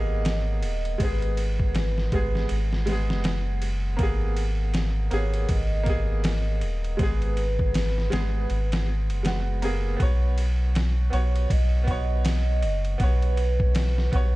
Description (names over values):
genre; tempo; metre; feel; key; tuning
trip hop; 80 BPM; 4/4; swing 60% on 16ths; G# minor; A4 = 440 Hz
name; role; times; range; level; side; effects
pure breathy sine lead; melody; 0.0-14.4 s; B4 to D#5; -35 LUFS; right 2 dB; lush chorus, tape echo
bright upright piano; accompaniment; 0.0-14.4 s; G#3 to C#5; -32 LUFS; right 1 dB; tremolo
soft dub sub bass; bass; 0.0-14.4 s; D#1 to B1; -24 LUFS; equal; none
trip hop sampler-style drum kit; drums; 0.2-14.3 s; kick drum, ride cymbal, snare drum; -28 LUFS; equal; overdrive, small room ambience
room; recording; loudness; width
little or no reverb; dark, warm production; -22 LUFS; side -19 dB against mid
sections
0.0-14.4 A section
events
none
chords
0.0 G#madd9; 10.0 Bsus2